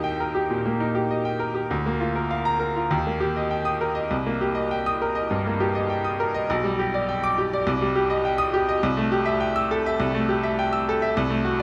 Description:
classical, virtuoso piano study; 102 BPM; 4/4; rubato; Eb major; A4 = 439 Hz
bright grand piano; solo; 0.0-11.6 s; B1 to E6; -24 LUFS; equal
wet recital hall reverb, RT60 1.7 s; -24 LUFS; mono
0.0-11.6 A section
0.0 Eb; 1.7 Bb/D; 2.9 Eb; 4.1 Cm7; 6.5 G/B; 7.7 Cm; 8.8 Am7/C

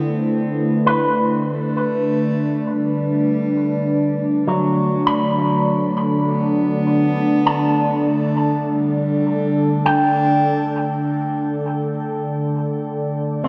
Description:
ambient; 50 BPM; 3/4; straight; A4 = 440 Hz
dark cello; melody; 0.0-13.5 s; F#3 to D4; -31 LUFS; equal; shimmer reverb, analog delay
warm analog pad; sustained chords; 0.0-13.5 s; D3 to B4; -21 LUFS; equal; lush chorus
electric guitar with an envelope filter; arpeggios; 0.9-13.5 s; F#3 to B5; -24 LUFS; equal; shimmer reverb, analog delay
wet plate reverb, RT60 3.5 s; echo-heavy mix; -19 LUFS; mono
0.0-13.5 A section
fade-in on cello 0.0-13.5; filter sweep on analog synth pad 0.0-13.5
0.0 Gmaj7

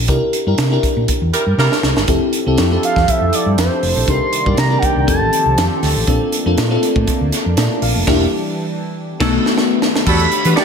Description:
polished 1980s jazz-funk pop; 120 BPM; 4/4; swing 54% on 16ths; A4 = 440 Hz
bell-like FM electric piano; accompaniment; 0.0-10.6 s; A3 to F5; -19 LUFS; left 3 dB; tremolo, wide subtle chorus
hollow-body short-scale fingered electric bass; bass; 0.0-10.5 s; E1 to E3; -18 LUFS; equal
crisp fusion drum kit; drums; 0.1-10.6 s; crash cymbal, hi-hat, kick drum, snare drum; -19 LUFS; right 1 dB
clear horn section; second line; 1.3-1.7, 9.2-10.6 s; F#3 to D5; -21 LUFS; right 2 dB
chorused pulse-width pad; sustained chords; 2.4-10.1 s; C3 to D5; -23 LUFS; right 1 dB
expressive synth lead; melody; 2.8-5.8, 10.1-10.6 s; C5 to C6; -18 LUFS; right 2 dB; chorus, phaser, ping-pong delay
wet lush hall reverb, RT60 1.7 s, studio ambience; dreamy mix soaked in reverb; -13 LUFS; side -6 dB against mid
0.0-10.1 A section
band accent 0.1-2.1, 8.1-10.1; drum fill 1.6-2.1, 9.1-10.1
0.1 C7; 2.1 Fmaj9; 4.1 Cm7; 5.1 F7; 6.1 Bbmaj7; 8.1 Em7b5; 9.1 B7; 10.1 Em11

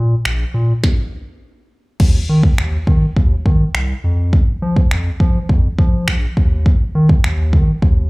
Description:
dance-pop; 103 BPM; 4/4; straight; A4 = 440 Hz
round analog bass; bass; 0.0-8.1 s; Bb1 to F3; -16 LUFS; equal; sidechain pumping
minimal click drum kit; drums; 0.3-8.0 s; crash cymbal, finger snaps, kick drum, snare drum; -14 LUFS; equal
little or no reverb; live gig heard through the venue's PA, club reverb; -13 LUFS; side -25 dB against mid
0.0-2.0 A section; 2.0-8.1 B section
stop 0.8-2.0

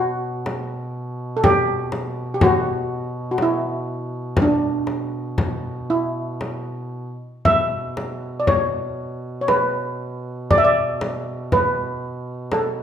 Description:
caucasian folk, Caucasian lament; 60 BPM; 3/4; rubato; B minor; A4 = 442 Hz
steel pan; melody; 0.0-12.8 s; D4 to E5; -20 LUFS; equal
mellow duduk; drone; 0.0-12.8 s; B2; -30 LUFS; right 1 dB
frame drum; percussion; 0.5-12.7 s; -23 LUFS; left 2 dB
moderate recital hall reverb, RT60 1.4 s; minimal, uncompressed stereo recording; -19 LUFS; side -9 dB against mid
0.0-12.8 A section

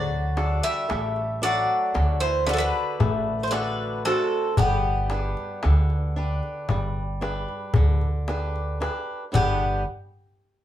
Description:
greek folk, Greek bouzouki band; 114 BPM (eighths); 9/8; straight; G major; A4 = 440 Hz
Greek bouzouki; melody; 0.0-9.8 s; G4 to E5; -28 LUFS; right 1 dB
Greek bouzouki; second line; 0.0-9.8 s; C3 to B3; -29 LUFS; left 1 dB
picked swing-style acoustic guitar; accompaniment; 0.0-9.8 s; G2 to B4; -30 LUFS; equal
upright bass; bass; 0.0-9.8 s; G1 to D2; -25 LUFS; equal
darbuka; percussion; 0.4-9.8 s; -27 LUFS; left 3 dB
moderate studio reverb, RT60 0.6 s; band playing live in one room; -22 LUFS; side -12 dB against mid
0.0-9.3 A section; 9.3-10.6 B section
0.0 D; 4.6 G

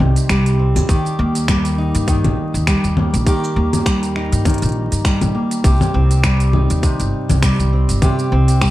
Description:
folktronica; 101 BPM; 4/4; swing 56% on 16ths; Eb major; A4 = 439 Hz
fingerpicked steel-string acoustic guitar; arpeggios; 0.0-8.7 s; C3 to G4; -19 LUFS; equal; tape echo
upright bass; bass; 0.0-8.7 s; G1 to G2; -17 LUFS; equal
organic electronic drum kit; drums; 0.0-8.7 s; congas, finger snaps, hi-hat, shaker; -21 LUFS; left 1 dB
electronic kick drum; drums; 0.3-8.7 s; -17 LUFS; equal
light reverb; vinyl crackle; -14 LUFS; side -16 dB against mid
0.0-8.7 A section
0.0 Cm; 0.9 Eb; 5.6 Cm

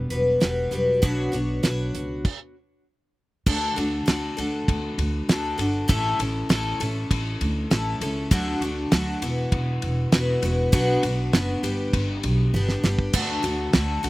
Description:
folk rock and heartland rock; 99 BPM; 4/4; straight; D major; A4 = 440 Hz
picked twelve-string acoustic guitar; accompaniment; 0.0-14.1 s; A2 to C#5; -25 LUFS; left 1 dB; slapback echo
upright bass; bass; 0.0-14.1 s; E1 to D2; -26 LUFS; equal
damped 70s drum kit; drums; 0.1-14.1 s; crash cymbal, hi-hat, kick drum, ride cymbal, snare drum, toms; -25 LUFS; right 1 dB
little or no reverb; recorded outdoors, with no room sound; -21 LUFS; side -18 dB against mid
0.0-3.5 A section; 3.5-14.1 B section
stop 2.2-3.5; drum fill 12.5-13.1
0.0 Emadd9; 1.0 Bmadd9; 3.5 D; 5.9 A; 8.3 D; 9.2 Esus2; 10.7 Bm; 11.6 G; 13.1 D

